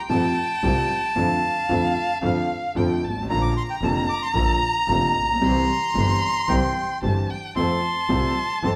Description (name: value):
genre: tango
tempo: 113 BPM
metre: 4/4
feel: rubato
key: F major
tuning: A4 = 439 Hz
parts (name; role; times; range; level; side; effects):
- bandoneon; melody; 0.0-8.7 s; F5 to D6; -26 LUFS; equal; none
- warm violin; second line; 0.0-8.8 s; F5 to C6; -31 LUFS; equal; none
- warm concert grand piano; accompaniment; 0.1-8.8 s; F1 to A4; -28 LUFS; equal; none
- clear double bass; bass; 0.1-8.8 s; F1 to F2; -28 LUFS; equal; none
room: wet large studio reverb, RT60 0.9 s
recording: band playing live in one room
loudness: -22 LUFS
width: mono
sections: 0.0-8.8 A section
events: none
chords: 0.0 F; 1.2 Dm/F; 3.3 Bb; 5.4 C; 7.6 F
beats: 0.10 0.63 | 1.16 1.70 2.23 2.76 | 3.29 3.82 4.35 4.88 | 5.42 5.95 6.49 7.03 | 7.56 8.10 8.63